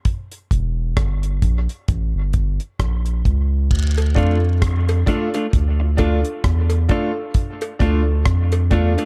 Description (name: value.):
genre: dub reggae.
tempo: 66 BPM.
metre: 4/4.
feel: swing 57% on 16ths.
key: D harmonic minor.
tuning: A4 = 440 Hz.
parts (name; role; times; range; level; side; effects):
deep reggae drum kit; drums; 0.1-9.1 s; crash cymbal, hi-hat, kick drum, rim click; -23 LUFS; equal; none.
soft dub sub bass; bass; 0.5-9.0 s; E1 to F2; -20 LUFS; equal; none.
jawbone-type rattle and cowbell; percussion; 3.7-9.1 s; none; -33 LUFS; equal; dub echo.
warm concert grand piano; stabs; 4.1-8.9 s; D4 to A4; -28 LUFS; equal; dub echo.
clean electric guitar; accompaniment; 4.2-9.1 s; A3 to F4; -27 LUFS; equal; dub echo.
room: small room ambience.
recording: dark, warm production.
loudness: -19 LUFS.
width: mono.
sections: 0.0-3.7 A section; 3.7-9.1 B section.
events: break 0.0-3.7.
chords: 0.1 Edim; 3.7 Dm.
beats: | 0.05 0.96 1.88 2.79 | 3.70 4.62 5.53 6.44 | 7.35 8.26.